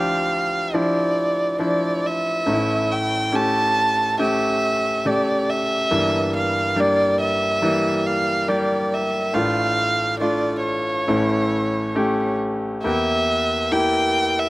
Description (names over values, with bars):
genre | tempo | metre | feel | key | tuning
pop | 69 BPM | 4/4 | straight | D harmonic minor | A4 = 435 Hz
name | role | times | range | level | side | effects
warm violin | melody | 0.0-14.5 s | C#5 to A5 | -21 LUFS | right 1 dB | slapback echo
clear concert grand piano | accompaniment | 0.0-14.5 s | G1 to G4 | -21 LUFS | left 1 dB | slapback echo
room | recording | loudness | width
little or no reverb | recorded outdoors, with no room sound | -18 LUFS | side -19 dB against mid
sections
0.0-12.8 A section; 12.8-14.5 B section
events
none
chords
0.0 Dmadd9; 2.5 A; 5.9 Edim/G; 9.4 Dm/A; 11.1 A; 12.8 Edim